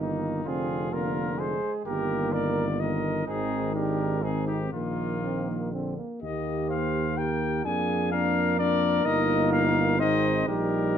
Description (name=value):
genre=classical, brass quintet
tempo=126 BPM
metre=3/4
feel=rubato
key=Eb major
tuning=A4 = 443 Hz
part: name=mellow trumpet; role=melody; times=0.0-11.0 s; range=Eb4 to Ab5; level=-31 LUFS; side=left 8 dB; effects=none
part: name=dark trumpet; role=second line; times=0.0-11.0 s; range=Bb3 to C5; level=-32 LUFS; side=right 7 dB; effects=none
part: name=clear French horn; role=accompaniment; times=0.0-11.0 s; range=D3 to G4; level=-31 LUFS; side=left 5 dB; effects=none
part: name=warm trombone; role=accompaniment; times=0.0-11.0 s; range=G3 to Eb4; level=-33 LUFS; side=right 2 dB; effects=none
part: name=mellow tuba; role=bass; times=0.0-11.0 s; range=F1 to F2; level=-29 LUFS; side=right 3 dB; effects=none
room=moderate large studio reverb, RT60 0.9 s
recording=dark, warm production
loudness=-24 LUFS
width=side -8 dB against mid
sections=0.0-6.2 A section; 6.2-11.0 B section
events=none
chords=0.5 Bb7/F; 1.9 Eb/G; 3.3 Ab; 4.7 Bbsus4; 5.7 Bb; 6.2 Eb; 7.7 Bb7/F; 9.1 Eb/G; 10.0 Ab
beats=| 0.46 0.92 1.39 | 1.86 2.33 2.80 | 3.27 3.75 4.23 | 4.73 5.23 5.73 | 6.22 6.70 7.18 | 7.65 8.13 8.59 | 9.05 9.52 10.00 | 10.48 10.97